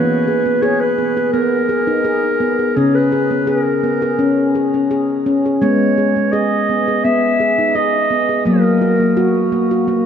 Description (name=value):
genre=world meditative, meditative tuned percussion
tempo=84 BPM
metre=4/4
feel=straight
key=G# minor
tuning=A4 = 439 Hz
part: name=dark clarinet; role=melody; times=0.0-9.5 s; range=G#4 to E5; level=-18 LUFS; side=equal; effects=shimmer reverb, tape echo
part: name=handpan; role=arpeggios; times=0.0-10.1 s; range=C#3 to G#4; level=-15 LUFS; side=left 1 dB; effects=tape echo
room=wet echo chamber reverb, RT60 2.3 s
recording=dark, warm production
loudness=-13 LUFS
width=side -8 dB against mid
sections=0.0-10.1 A section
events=none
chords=0.0 E; 2.8 C#5; 5.6 G#m; 8.5 F#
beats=0.63 1.34 2.05 | 2.77 3.48 4.19 4.90 | 5.61 6.33 7.04 7.75 | 8.46 9.17 9.89